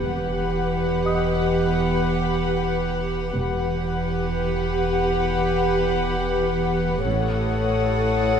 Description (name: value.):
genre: cinematic.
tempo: free time.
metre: none.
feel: none.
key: unclear.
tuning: A4 = 440 Hz.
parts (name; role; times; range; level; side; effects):
warm studio violin section; melody; 0.0-8.4 s; F#5; -29 LUFS; left 5 dB; none.
warm studio violin section; second line; 0.0-8.4 s; B4 to C#5; -29 LUFS; left 2 dB; none.
warm studio viola section; accompaniment; 0.0-8.4 s; G4 to A4; -27 LUFS; equal; none.
ethereal airy pad; sustained chords; 0.0-8.4 s; G4 to F#5; -28 LUFS; left 1 dB; ensemble chorus, built-in reverb.
warm studio cello section; bass; 0.0-8.4 s; E2 to A2; -26 LUFS; right 4 dB; none.
warm studio double bass section; bass; 0.0-7.9 s; E1 to A1; -32 LUFS; right 2 dB; none.
warm sub bass; drone; 0.0-8.4 s; E1 to A1; -31 LUFS; equal; none.
impact; sound effects; 0.0-3.4 s; none; -38 LUFS; equal; none.
felt-muted upright piano; texture; 1.1-7.1 s; D#5 to D#6; -34 LUFS; left 3 dB; none.
warm studio violin section; texture; 7.0-8.4 s; A5 to D#6; -35 LUFS; left 4 dB; none.
room: wet scoring stage reverb, RT60 1.6 s.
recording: none.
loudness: -20 LUFS.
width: side -7 dB against mid.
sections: 0.0-8.4 A section.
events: impact 0.0-3.4.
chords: 0.0 Emadd9; 7.1 A6.